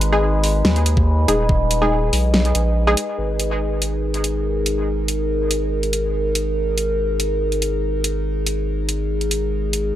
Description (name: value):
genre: deep dubstep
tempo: 142 BPM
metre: 4/4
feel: half-time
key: G# minor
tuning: A4 = 437 Hz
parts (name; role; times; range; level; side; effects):
- overtone-sweeping drone; sustained chords; 0.0-10.0 s; G#3 to B4; -22 LUFS; equal; chorus, built-in reverb
- saturated sub bass; bass; 0.0-9.9 s; D#1 to D#2; -21 LUFS; equal; none
- dubstep drum kit; drums; 0.0-9.8 s; hi-hat, snare drum; -21 LUFS; equal; small room ambience
- filtered dub chord stab; stabs; 0.1-2.9 s; G#3 to G#4; -22 LUFS; equal; chorus, dub echo
- electronic kick drum; drums; 1.0-1.6 s; none; -19 LUFS; equal; small room ambience
room: light reverb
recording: dry, gritty hardware recording, transformer saturation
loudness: -17 LUFS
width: side -12 dB against mid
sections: 0.0-3.2 A section; 3.2-10.0 B section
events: none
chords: 0.0 G#5